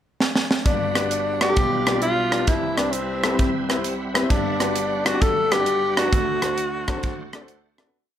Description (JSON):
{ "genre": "uptempo gospel", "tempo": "132 BPM", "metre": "4/4", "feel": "swing 66% on 8ths", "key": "G major", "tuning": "A4 = 441 Hz", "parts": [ { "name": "crisp fusion drum kit", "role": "drums", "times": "0.2-7.9 s", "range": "hi-hat, kick drum, rim click, snare drum", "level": "-22 LUFS", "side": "equal", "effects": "none" }, { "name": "breathy tenor saxophone", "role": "melody", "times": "0.7-7.8 s", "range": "C4 to A4", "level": "-23 LUFS", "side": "left 1 dB", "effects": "none" }, { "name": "clear upright piano", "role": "accompaniment", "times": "0.7-7.9 s", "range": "G1 to D5", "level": "-27 LUFS", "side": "left 3 dB", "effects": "none" }, { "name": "bright tonewheel organ", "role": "sustained chords", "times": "0.7-7.9 s", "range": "B2 to B5", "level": "-29 LUFS", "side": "right 3 dB", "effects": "fast rotary speaker, overdrive, chorus vibrato" } ], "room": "moderate large studio reverb, RT60 1.3 s", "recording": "none", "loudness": "-19 LUFS", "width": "side -10 dB against mid", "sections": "0.0-0.7 pickup bar; 0.7-7.9 breakdown", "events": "drum fill 0.2-0.7; fade-out 6.1-7.9", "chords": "0.0 N.C.; 0.7 Gmaj7; 1.6 G7/B; 2.5 Cmaj7; 4.3 Gmaj7; 6.1 D7", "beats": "0.20 | 0.66 1.11 1.57 2.02 | 2.48 2.93 3.39 3.85 | 4.30 4.76 5.21 5.67 | 6.12 6.58 7.03 7.49" }